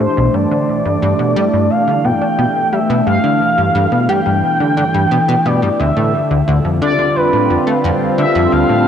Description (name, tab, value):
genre	ambient, sequencer-driven space music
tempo	88 BPM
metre	4/4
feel	straight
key	unclear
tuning	A4 = 440 Hz
part	expressive synth lead	melody	0.0-8.9 s	B4 to G5	-16 LUFS	equal	wide subtle chorus, analog delay
part	phased analog pad	sustained chords	0.0-8.9 s	D3 to A4	-16 LUFS	equal	phaser, chorus
part	plucky analog bass	riff	0.0-8.9 s	B1 to D4	-17 LUFS	equal	wide subtle chorus, analog delay
room	wet plate reverb, RT60 3.7 s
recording	dreamy mix soaked in reverb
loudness	-12 LUFS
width	side -8 dB against mid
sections	0.0-8.9 A section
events	none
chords	0.3 G; 5.8 Dm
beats	| 0.34 1.02 1.70 2.39 | 3.07 3.75 4.43 5.11 | 5.79 6.48 7.16 7.84 | 8.52